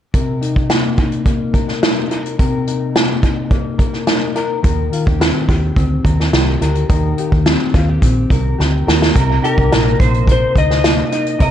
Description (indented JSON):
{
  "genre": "indie pop, bedroom pop",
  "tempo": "107 BPM",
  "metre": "4/4",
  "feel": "straight",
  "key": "C minor",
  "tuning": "A4 = 435 Hz",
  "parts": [
    { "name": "mellow electric guitar", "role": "accompaniment", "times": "0.1-11.5 s", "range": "C3 to Bb4", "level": "-20 LUFS", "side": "left 3 dB", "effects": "lush chorus, vibrato effect, analog delay" },
    { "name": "unplugged drum kit", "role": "drums", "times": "0.1-11.5 s", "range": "hi-hat, kick drum, snare drum", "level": "-15 LUFS", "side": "equal", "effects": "vintage 12-bit sampler grit, analog delay" },
    { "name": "vintage muted fingered electric bass", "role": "bass", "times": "4.6-11.5 s", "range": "Bb1 to Eb2", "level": "-17 LUFS", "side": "equal", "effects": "none" },
    { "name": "electric guitar through a small old amp", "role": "second line", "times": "9.2-11.5 s", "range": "G4 to C5", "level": "-22 LUFS", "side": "right 6 dB", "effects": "ensemble chorus, analog delay" },
    { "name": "electric slide guitar", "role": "melody", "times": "9.5-11.5 s", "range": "Bb4 to Eb5", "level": "-18 LUFS", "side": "left 3 dB", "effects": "wide subtle chorus, analog delay" }
  ],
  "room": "moderate spring reverb, RT60 1.7 s, studio ambience",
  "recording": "echo-heavy mix",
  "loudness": "-13 LUFS",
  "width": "side -10 dB against mid",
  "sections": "0.1-9.2 A section; 9.2-11.5 B section",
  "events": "drum fill 8.6-9.2",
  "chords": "0.1 Cm7; 4.6 Eb6; 9.2 Cm7"
}